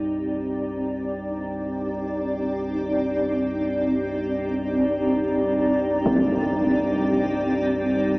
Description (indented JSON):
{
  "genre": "dark ambient drone",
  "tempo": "free time",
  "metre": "none",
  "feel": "none",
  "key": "C minor",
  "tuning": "A4 = 439 Hz",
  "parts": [
    { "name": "granular cloud pad", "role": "sustained chords", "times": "0.0-8.2 s", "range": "C4 to D5", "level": "-22 LUFS", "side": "equal", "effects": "built-in reverb" },
    { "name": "deep rumbling drone", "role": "drone", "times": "0.0-8.2 s", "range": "C2 to G2", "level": "-31 LUFS", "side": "equal", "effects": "built-in reverb" },
    { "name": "impact", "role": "percussion", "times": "6.1-6.3 s", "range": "none", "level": "-28 LUFS", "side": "equal", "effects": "low-pass filter on sfx" }
  ],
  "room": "wet huge ambient reverb, RT60 7.9 s",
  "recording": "in a vast, echoing space, small speaker sound",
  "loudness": "-21 LUFS",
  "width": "side -26 dB against mid",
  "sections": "0.0-8.2 A section",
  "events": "none",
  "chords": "0.0 Cmadd9"
}